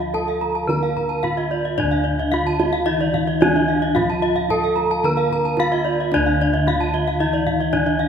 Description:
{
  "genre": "Balinese gamelan",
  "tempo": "110 BPM",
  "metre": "4/4",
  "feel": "straight",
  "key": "D pelog",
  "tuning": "A4 = 443 Hz",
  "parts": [
    { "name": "gamelan-type bronze metallophone", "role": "melody", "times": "0.0-8.1 s", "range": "D4 to Bb4", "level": "-22 LUFS", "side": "right 1 dB", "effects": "none" },
    { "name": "gamelan-type bronze metallophone", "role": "accompaniment", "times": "0.0-8.1 s", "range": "D3 to Bb3", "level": "-28 LUFS", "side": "left 1 dB", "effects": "none" },
    { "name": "gamelan-type bronze metallophone", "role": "arpeggios", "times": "0.0-8.1 s", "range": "D5 to Bb5", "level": "-26 LUFS", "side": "right 3 dB", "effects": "none" },
    { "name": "gamelan-type bossed gongs", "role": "bass", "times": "0.0-8.1 s", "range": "D2 to F4", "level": "-25 LUFS", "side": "equal", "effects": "none" },
    { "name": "gamelan-type bronze metallophone", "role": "arpeggios", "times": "0.1-7.9 s", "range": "D5 to Bb5", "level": "-25 LUFS", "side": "left 3 dB", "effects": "none" },
    { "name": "kendang", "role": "percussion", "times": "0.1-8.1 s", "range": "none", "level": "-25 LUFS", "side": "right 2 dB", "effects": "none" }
  ],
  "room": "wet concert hall reverb, RT60 2.5 s",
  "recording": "minimal, uncompressed stereo recording",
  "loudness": "-17 LUFS",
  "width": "side -7 dB against mid",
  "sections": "0.0-8.1 A section",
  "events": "none",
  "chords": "none",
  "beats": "0.14 0.68 1.23 | 1.77 2.32 2.86 3.41 | 3.96 4.50 5.05 5.59 | 6.14 6.68 7.21 7.74"
}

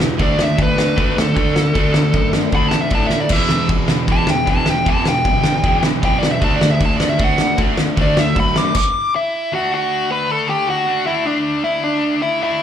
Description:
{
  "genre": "punk rock",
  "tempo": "154 BPM",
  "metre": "4/4",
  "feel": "straight",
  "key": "unclear",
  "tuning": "A4 = 444 Hz",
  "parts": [
    { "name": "biting overdriven guitar", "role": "riff", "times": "0.0-8.8 s", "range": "E2 to D4", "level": "-27 LUFS", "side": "left 2 dB", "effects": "slapback echo" },
    { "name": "overdriven electric guitar", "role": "riff", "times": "0.0-12.6 s", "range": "E2 to D4", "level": "-24 LUFS", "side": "left 9 dB", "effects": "slapback echo" },
    { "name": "overdriven electric guitar", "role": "riff", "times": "0.0-8.7 s", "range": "E2 to D4", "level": "-23 LUFS", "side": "right 7 dB", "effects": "slapback echo" },
    { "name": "fuzz picked electric bass", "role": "bass", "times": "0.0-8.7 s", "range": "E1 to A2", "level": "-22 LUFS", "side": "left 1 dB", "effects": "overdrive" },
    { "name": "loose indie drum kit", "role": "drums", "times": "0.0-8.8 s", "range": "crash cymbal, kick drum, snare drum", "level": "-18 LUFS", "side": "equal", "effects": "none" },
    { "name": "dark smooth lead guitar", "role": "melody", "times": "0.2-12.6 s", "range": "D4 to D6", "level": "-19 LUFS", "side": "equal", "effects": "overdrive, slapback echo" }
  ],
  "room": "small room ambience",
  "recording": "live gig heard through the venue's PA, club reverb",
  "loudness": "-14 LUFS",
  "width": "side -9 dB against mid",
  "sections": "0.0-9.5 A section; 9.5-12.6 B section",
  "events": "lead electric guitar solo 0.0-9.5; drum fill 3.1; stop 8.8-9.5",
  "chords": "0.2 D5; 3.3 Em; 6.4 D5; 9.5 D",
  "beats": "| 0.19 0.58 0.97 1.36 | 1.75 2.14 2.53 2.92 | 3.31 3.70 4.09 4.48 | 4.87 5.25 5.64 6.03 | 6.42 6.81 7.20 7.59 | 7.97 8.36 8.75 9.14 | 9.53 9.91 10.30 10.69 | 11.07 11.46 11.85 12.23 | 12.62"
}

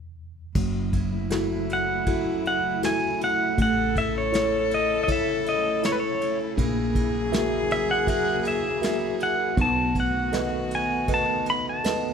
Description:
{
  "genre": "acoustic folk-pop ballad",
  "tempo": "80 BPM",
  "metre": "4/4",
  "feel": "straight",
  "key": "F# dorian",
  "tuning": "A4 = 440 Hz",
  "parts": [
    { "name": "tine electric piano", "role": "accompaniment", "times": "0.0-12.1 s", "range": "E2 to E5", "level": "-28 LUFS", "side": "equal", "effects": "overdrive, fast stereo tremolo" },
    { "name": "warm cello", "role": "second line", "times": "0.6-12.1 s", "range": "E4 to A4", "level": "-30 LUFS", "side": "left 6 dB", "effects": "none" },
    { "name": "lush unison pad", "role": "sustained chords", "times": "0.9-12.1 s", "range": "C#3 to F#4", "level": "-34 LUFS", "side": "right 1 dB", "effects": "chorus" },
    { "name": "woody fretless electric bass", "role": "bass", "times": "0.6-12.1 s", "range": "F#1 to B1", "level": "-31 LUFS", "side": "equal", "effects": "none" },
    { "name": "vintage brush drum kit", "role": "drums", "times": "0.6-12.0 s", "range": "crash cymbal, kick drum, ride cymbal, snare drum", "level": "-31 LUFS", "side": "equal", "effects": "none" },
    { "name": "pedal steel guitar", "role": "melody", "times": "1.7-12.1 s", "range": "B4 to B5", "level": "-25 LUFS", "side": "right 1 dB", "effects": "none" }
  ],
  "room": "light reverb",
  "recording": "none",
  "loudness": "-22 LUFS",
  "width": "side -7 dB against mid",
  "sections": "0.6-12.1 A section",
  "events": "none",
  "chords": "0.0 N.C.; 0.6 F#m7; 3.6 A; 6.6 F#7/A#; 9.6 B7",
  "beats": "| 0.55 1.31 2.07 2.83 | 3.58 4.33 5.08 5.83 | 6.58 7.33 8.08 8.83 | 9.58 10.33 11.09 11.85"
}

